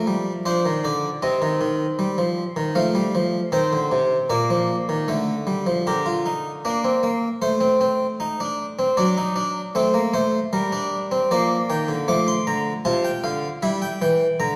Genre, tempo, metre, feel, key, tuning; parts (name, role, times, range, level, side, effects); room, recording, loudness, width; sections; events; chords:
classical, baroque-style 3-part fugue for harpsichord; 77 BPM; 4/4; straight; Bb major, G minor from 5.9 s; A4 = 438 Hz
harpsichord; solo; 0.0-14.6 s; Bb2 to D6; -22 LUFS; equal
wet recital hall reverb, RT60 1.5 s; heard from further back in the room; -22 LUFS; mono
0.0-5.9 A section; 5.9-14.6 B section
0.0 Bb/F; 1.2 Cm; 2.8 F7; 4.3 Bb; 5.9 Gm/D (rootless); 7.4 Am; 9.0 D7/F#; 10.5 Gm; 12.1 Dm; 13.6 Edim